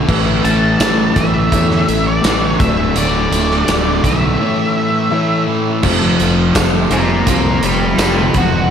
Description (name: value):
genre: classic rock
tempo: 84 BPM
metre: 4/4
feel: straight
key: unclear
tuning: A4 = 439 Hz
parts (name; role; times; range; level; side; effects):
- biting overdriven guitar; riff; 0.0-8.7 s; D2 to A3; -20 LUFS; right 8 dB; slapback echo
- sludgy distorted guitar; riff; 0.0-8.7 s; D2 to A3; -19 LUFS; left 8 dB; overdrive, slapback echo
- fuzz fingered electric bass; bass; 0.0-8.7 s; D1 to E2; -18 LUFS; equal; overdrive
- dark upright piano; accompaniment; 0.1-8.6 s; C4 to D5; -25 LUFS; left 6 dB; slapback echo
- big rock drum kit; drums; 0.1-8.5 s; crash cymbal, hi-hat, kick drum, snare drum, tambourine; -17 LUFS; right 1 dB; none
- octave-fuzz lead guitar; melody; 0.4-8.7 s; D4 to A5; -19 LUFS; equal; distortion
- tambourine; percussion; 6.6-8.2 s; none; -38 LUFS; right 11 dB; none
room: moderate lush hall reverb, RT60 2.7 s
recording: big arena sound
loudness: -12 LUFS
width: side -8 dB against mid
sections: 0.0-5.8 A section; 5.8-8.7 B section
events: lead electric guitar solo 5.8-8.7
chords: 0.1 Asus2; 2.6 D; 4.4 A; 5.8 Fadd9